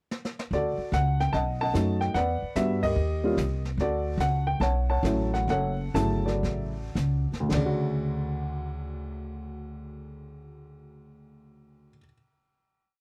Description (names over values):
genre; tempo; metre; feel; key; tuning
jazz piano trio; 102-147 BPM; 4/4; swing 66% on 8ths; D major; A4 = 441 Hz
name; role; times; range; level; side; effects
jazz brush drum kit; drums; 0.1-8.0 s; brushed snare drum, hi-hat, kick drum, ride cymbal, snare drum; -42 LUFS; equal; none
dark baby grand piano; melody; 0.5-12.1 s; D2 to A5; -30 LUFS; equal; none
upright bass; bass; 0.5-12.0 s; F#1 to G2; -31 LUFS; equal; none
room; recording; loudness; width
little or no reverb; dry, close 1970s-style studio recording; -27 LUFS; mono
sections
0.0-0.5 pickup bar; 0.5-7.5 A section; 7.5-12.2 final chord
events
drum fill 0.1-0.5; band accent 2.8; slowing down 3.8-7.5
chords
0.0 N.C.; 0.5 Dmaj7; 1.3 B7; 2.2 Em7; 3.0 Eb; 3.8 Dmaj7